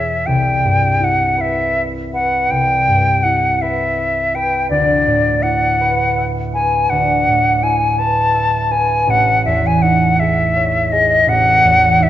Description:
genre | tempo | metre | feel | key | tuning
classical, impressionist duo for flute and harp | 55 BPM (dotted quarters) | 12/8 | rubato | unclear | A4 = 440 Hz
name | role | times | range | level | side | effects
silver concert flute | melody | 0.0-12.1 s | D5 to A5 | -14 LUFS | left 1 dB | none
concert harp | accompaniment | 0.0-12.1 s | A1 to E5 | -18 LUFS | right 1 dB | none
room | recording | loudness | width
moderate scoring stage reverb, RT60 1.7 s | dark, warm production, nothing above 7.6 kHz | -12 LUFS | side -12 dB against mid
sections
0.0-12.1 A section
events
none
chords
0.3 Cmaj7; 4.7 D69; 9.1 Amaj7#11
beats
| 0.27 1.39 2.51 3.62 | 4.72 5.80 6.91 7.98 | 9.08 10.19 11.27

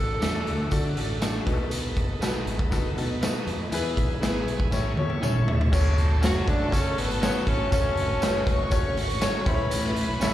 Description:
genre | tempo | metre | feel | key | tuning
uptempo 1960s-style soul | 120 BPM | 4/4 | straight | unclear | A4 = 440 Hz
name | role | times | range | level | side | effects
breathy tenor saxophone | melody | 0.0-1.2, 6.2-8.7 s | B3 to A4 | -30 LUFS | equal | slapback echo
bright grand piano | accompaniment | 0.0-10.3 s | A2 to E5 | -31 LUFS | left 4 dB | slapback echo
bright tonewheel organ | sustained chords | 0.0-10.3 s | A3 to D6 | -37 LUFS | equal | overdrive, slow rotary speaker
modern bright fingered electric bass | bass | 0.0-10.3 s | F#1 to D3 | -30 LUFS | equal | none
clean electric guitar | stabs | 0.2-10.3 s | A3 to C#5 | -38 LUFS | right 3 dB | none
raw garage drum kit | drums | 0.2-10.3 s | crash cymbal, hi-hat, kick drum, snare drum, toms | -25 LUFS | equal | none
tambourine | percussion | 0.2-10.3 s | none | -41 LUFS | right 2 dB | none
warm studio violin section | second line | 5.7-10.3 s | A4 to C#6 | -33 LUFS | equal | slapback echo
room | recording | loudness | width
light reverb, small room ambience | live gig heard through the venue's PA, club reverb | -22 LUFS | side -13 dB against mid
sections
0.0-5.7 A section; 5.7-10.3 B section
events
drum fill 4.7-5.7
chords
0.0 D; 1.5 B7; 3.7 E; 4.7 A; 5.7 F#m; 9.5 A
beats
0.22 0.72 1.22 | 1.72 2.22 2.72 3.22 | 3.72 4.22 4.72 5.22 | 5.72 6.22 6.72 7.22 | 7.72 8.22 8.72 9.22 | 9.72 10.22

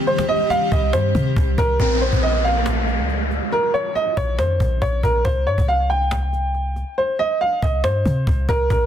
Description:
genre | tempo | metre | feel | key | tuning
hip hop, trap | 139 BPM | 4/4 | half-time | C phrygian | A4 = 445 Hz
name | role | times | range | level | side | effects
dark grand piano | melody | 0.0-8.9 s | Bb4 to G5 | -20 LUFS | right 1 dB | ping-pong delay
granular cloud pad | sustained chords | 0.0-1.8 s | Eb3 to G4 | -27 LUFS | equal | built-in reverb
cajon | drums | 0.1-8.8 s | none | -28 LUFS | left 1 dB | none
clean 808-style bass | bass | 0.7-8.9 s | Bb1 to C3 | -20 LUFS | equal | none
downlifter | sound effects | 1.8-5.2 s | none | -25 LUFS | equal | none
room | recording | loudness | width
studio reverb | dense, heavily limited modern master | -17 LUFS | side -10 dB against mid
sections
0.0-1.8 A section; 1.8-8.9 B section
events
hi-hats muted 7.0-8.7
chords
0.0 Cm; 1.8 Bb5; 5.2 C5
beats
| 0.07 0.50 0.93 1.36 | 1.80 2.23 2.66 3.09 | 3.52 3.96 4.39 4.82 | 5.25 5.68 6.11 6.54 | 6.98 7.41 7.84 8.27 | 8.70

